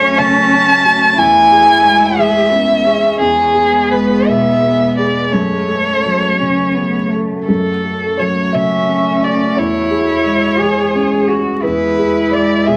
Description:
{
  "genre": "neoclassical piano and strings",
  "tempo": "54-61 BPM (dotted quarters)",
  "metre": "6/8",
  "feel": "rubato",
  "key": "F# minor",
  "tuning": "A4 = 439 Hz",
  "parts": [
    { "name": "rich violin", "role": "melody", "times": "0.0-12.8 s", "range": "G#4 to A5", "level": "-16 LUFS", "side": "equal", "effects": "none" },
    { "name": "rich cello", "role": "second line", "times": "0.0-12.8 s", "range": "A3 to G#4", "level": "-20 LUFS", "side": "equal", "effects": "none" },
    { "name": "felt-muted upright piano", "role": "accompaniment", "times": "0.0-12.8 s", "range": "E2 to E5", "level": "-20 LUFS", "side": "equal", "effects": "none" },
    { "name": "deep dark ambient pad", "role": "sustained chords", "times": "0.0-12.8 s", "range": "G#3 to E5", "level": "-26 LUFS", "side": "equal", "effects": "chorus, built-in reverb" }
  ],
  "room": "wet studio reverb, RT60 0.9 s",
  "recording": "vinyl crackle",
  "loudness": "-13 LUFS",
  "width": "mono",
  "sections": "0.0-7.5 A section; 7.5-12.8 A section",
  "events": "none",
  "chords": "0.0 F#m; 1.2 C#m/E; 3.2 E; 5.3 F#m; 9.6 C#m/E; 11.6 E"
}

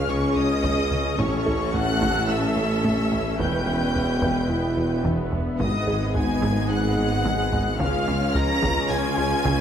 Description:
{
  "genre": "cinematic, hybrid orchestral and electronic film score",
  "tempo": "109 BPM",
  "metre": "4/4",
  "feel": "straight",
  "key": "unclear",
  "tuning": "A4 = 441 Hz",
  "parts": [
    { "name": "warm symphonic violin section", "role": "melody", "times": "0.0-9.6 s", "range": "C#6 to A#6", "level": "-30 LUFS", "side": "left 2 dB", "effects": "none" },
    { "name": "warm studio violin section", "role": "second line", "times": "0.0-9.6 s", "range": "C#5 to A#5", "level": "-30 LUFS", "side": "left 2 dB", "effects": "none" },
    { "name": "warm symphonic viola section", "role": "accompaniment", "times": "0.0-9.6 s", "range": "B3 to B4", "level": "-31 LUFS", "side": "equal", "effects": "none" },
    { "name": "dark French horn section", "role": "sustained chords", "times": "0.0-9.6 s", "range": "B3 to G#4", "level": "-32 LUFS", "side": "left 2 dB", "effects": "none" },
    { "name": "warbly tape-like pad", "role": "sustained chords", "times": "0.0-9.6 s", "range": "E3 to E5", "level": "-31 LUFS", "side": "left 2 dB", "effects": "chorus, built-in reverb" },
    { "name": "clear symphonic double bass section", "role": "bass", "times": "0.0-9.6 s", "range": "E1 to C#2", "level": "-32 LUFS", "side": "right 3 dB", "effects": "none" },
    { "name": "rich symphonic cello section", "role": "bass", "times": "0.0-9.6 s", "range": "E2 to C#3", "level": "-32 LUFS", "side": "right 2 dB", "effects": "none" },
    { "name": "warm tuba", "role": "bass", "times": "0.0-9.6 s", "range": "E1 to C#2", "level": "-30 LUFS", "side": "right 3 dB", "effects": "none" },
    { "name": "wide detuned saw bass", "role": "bass", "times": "0.0-9.6 s", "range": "E1 to C#2", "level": "-34 LUFS", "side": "equal", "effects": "chorus" },
    { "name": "harp-like synth pluck", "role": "arpeggios", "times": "0.1-9.6 s", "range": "C#3 to A4", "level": "-31 LUFS", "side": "left 3 dB", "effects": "none" },
    { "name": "plucky analog bass", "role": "riff", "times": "0.1-9.6 s", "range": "C#2 to A3", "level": "-29 LUFS", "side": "right 2 dB", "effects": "none" },
    { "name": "taiko ensemble", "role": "drums", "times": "0.6-9.6 s", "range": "none", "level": "-31 LUFS", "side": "equal", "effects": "none" }
  ],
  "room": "wet recital hall reverb, RT60 1.4 s",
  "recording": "none",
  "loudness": "-20 LUFS",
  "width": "side -9 dB against mid",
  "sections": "0.0-9.6 A section",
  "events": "none",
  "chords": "0.0 C#5; 1.2 A; 3.4 Em; 5.6 G#m; 7.8 C#"
}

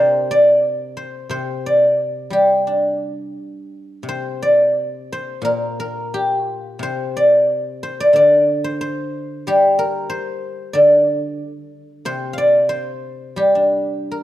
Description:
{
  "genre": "chinese traditional, Chinese solo plucked strings",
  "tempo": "82-94 BPM",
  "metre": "4/4",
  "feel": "rubato",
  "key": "G yu mode",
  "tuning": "A4 = 440 Hz",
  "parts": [
    { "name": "guzheng", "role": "solo", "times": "0.0-14.2 s", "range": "Bb2 to F5", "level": "-16 LUFS", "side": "equal", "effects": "none" }
  ],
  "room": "moderate scoring stage reverb, RT60 1.6 s",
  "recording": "dark, warm production",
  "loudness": "-15 LUFS",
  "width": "side -13 dB against mid",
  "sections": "0.0-14.2 A section",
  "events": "none",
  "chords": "none"
}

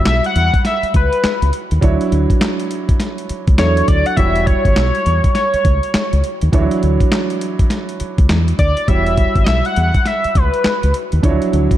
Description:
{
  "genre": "R&B, new jack swing",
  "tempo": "102 BPM",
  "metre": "4/4",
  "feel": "swing 62% on 16ths",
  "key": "E dorian",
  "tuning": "A4 = 440 Hz",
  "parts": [
    { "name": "octave-doubled lead", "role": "melody", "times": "0.0-10.9 s", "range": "B4 to F#5", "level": "-18 LUFS", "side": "left 1 dB", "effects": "chorus" },
    { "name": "warm concert grand piano", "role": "accompaniment", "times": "0.0-11.8 s", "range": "E3 to C#5", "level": "-21 LUFS", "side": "right 4 dB", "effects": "none" },
    { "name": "fingered electric bass", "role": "bass", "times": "0.0-11.7 s", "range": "E1 to E2", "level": "-16 LUFS", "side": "equal", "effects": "none" },
    { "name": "dusty soul sampler-style drum kit", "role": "drums", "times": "0.1-11.8 s", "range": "handclaps, hi-hat, kick drum, snare drum", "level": "-17 LUFS", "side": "equal", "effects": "none" }
  ],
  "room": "light reverb",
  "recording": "dark, warm production",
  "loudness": "-13 LUFS",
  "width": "side -12 dB against mid",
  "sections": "0.0-11.8 A section",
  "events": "none",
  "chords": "0.0 Em69; 1.8 Dmaj9; 4.2 Em69; 6.5 Dmaj9; 8.9 Em69; 11.2 Dmaj9"
}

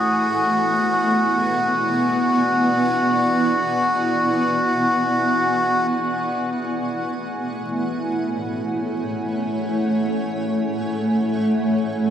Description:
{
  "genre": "ambient",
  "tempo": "free time",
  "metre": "none",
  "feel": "none",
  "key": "F# minor",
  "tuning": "A4 = 440 Hz",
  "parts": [
    { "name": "melodica", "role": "melody", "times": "0.0-5.9 s", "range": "F#4", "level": "-20 LUFS", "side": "left 1 dB", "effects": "dub echo" },
    { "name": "granular cloud pad", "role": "sustained chords", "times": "0.0-12.1 s", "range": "A3 to G#5", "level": "-21 LUFS", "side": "right 1 dB", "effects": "built-in reverb" }
  ],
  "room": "wet spring reverb, RT60 1.7 s, studio reverb",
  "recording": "vinyl crackle",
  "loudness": "-18 LUFS",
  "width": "side -9 dB against mid",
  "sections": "0.0-6.7 A section; 6.7-12.1 B section",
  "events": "none",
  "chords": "0.1 E9; 6.7 F#m9"
}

